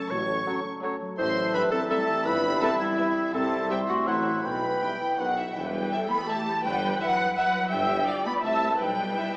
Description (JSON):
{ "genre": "cinematic, playful, whimsical film cue", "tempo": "166 BPM", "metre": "3/4", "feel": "straight", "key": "E minor", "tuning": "A4 = 440 Hz", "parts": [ { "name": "folk marimba with medium mallets", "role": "melody", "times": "0.0-5.3 s", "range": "G3 to F#4", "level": "-34 LUFS", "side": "left 1 dB", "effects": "none" }, { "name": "warm clarinet", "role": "second line", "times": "0.0-5.4 s", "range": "E4 to C#5", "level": "-28 LUFS", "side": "equal", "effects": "none" }, { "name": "warm studio violin section", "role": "second line", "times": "0.0-9.4 s", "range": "E5 to C#6", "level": "-32 LUFS", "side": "equal", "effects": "none" }, { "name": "dark studio viola section", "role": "accompaniment", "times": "0.0-9.4 s", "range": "F#3 to E5", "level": "-33 LUFS", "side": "equal", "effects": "none" }, { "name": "concert harp", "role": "arpeggios", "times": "0.0-9.4 s", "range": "E2 to E5", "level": "-36 LUFS", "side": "left 1 dB", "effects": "none" }, { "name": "rich studio cello section", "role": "bass", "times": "0.1-9.4 s", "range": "G2 to B3", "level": "-37 LUFS", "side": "right 1 dB", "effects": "none" }, { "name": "rich studio double bass section", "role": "bass", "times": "0.1-9.1 s", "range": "G1 to G2", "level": "-41 LUFS", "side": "right 1 dB", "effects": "none" }, { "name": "warm tuba", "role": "bass", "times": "0.1-9.1 s", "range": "E1 to C2", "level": "-36 LUFS", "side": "right 1 dB", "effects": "none" }, { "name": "warm studio violin section", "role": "melody", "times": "0.5-9.3 s", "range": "C#5 to G5", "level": "-35 LUFS", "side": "equal", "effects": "none" }, { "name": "flute section", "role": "second line", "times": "0.5-9.4 s", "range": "F#5 to C6", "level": "-30 LUFS", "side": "equal", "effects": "none" }, { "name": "warm oboe", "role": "second line", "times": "0.5-5.4 s", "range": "C#5 to G5", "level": "-32 LUFS", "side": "equal", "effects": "none" }, { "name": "clear bassoon", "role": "accompaniment", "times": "0.5-5.4 s", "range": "D#3 to G3", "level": "-37 LUFS", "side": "equal", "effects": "none" }, { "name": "mellow French horn section", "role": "sustained chords", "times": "0.5-5.3 s", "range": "F#3 to E4", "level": "-38 LUFS", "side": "equal", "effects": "none" } ], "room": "wet scoring stage reverb, RT60 1.7 s", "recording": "small speaker sound", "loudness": "-23 LUFS", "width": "side -24 dB against mid", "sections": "0.0-5.6 A section; 5.6-9.4 B section", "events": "none", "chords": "0.1 F#m/A; 1.2 Am7; 2.3 Em/G; 3.3 C6; 4.1 F#m7b5/A; 4.4 Em/B; 5.2 B; 5.6 Em; 6.6 Em/G; 7.7 G7; 8.4 C; 8.8 Em/B", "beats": "| 0.12 0.47 0.83 | 1.19 1.55 1.90 | 2.26 2.62 2.98 | 3.34 3.70 4.07 | 4.45 4.82 5.19 | 5.56 5.92 6.28 | 6.64 7.00 7.36 | 7.72 8.07 8.44 | 8.80 9.16" }